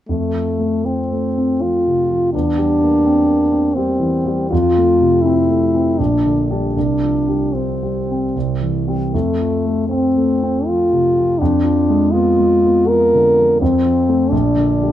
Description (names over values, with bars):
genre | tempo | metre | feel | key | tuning
classical, romantic duo for French horn and grand piano | 74-87 BPM | 3/4 | rubato | F major | A4 = 440 Hz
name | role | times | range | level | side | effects
warm French horn | melody | 0.1-14.9 s | A3 to Bb4 | -16 LUFS | equal | none
warm concert grand piano | accompaniment | 0.1-14.9 s | Bb1 to D4 | -18 LUFS | equal | none
room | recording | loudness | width
light reverb | close, detailed microphones | -14 LUFS | side -12 dB against mid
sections
0.1-14.9 A section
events
none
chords
0.1 F; 2.3 C7/E; 4.5 F; 6.0 Gm/Bb; 6.8 Csus4; 8.3 C; 9.1 F; 11.4 Fdim7; 13.6 F; 14.3 Gm/Bb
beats
| 0.09 0.84 1.63 | 2.33 3.04 3.75 | 4.51 5.24 5.99 | 6.76 7.55 8.35 | 9.13 9.89 10.68 | 11.40 12.12 12.89 | 13.61 14.32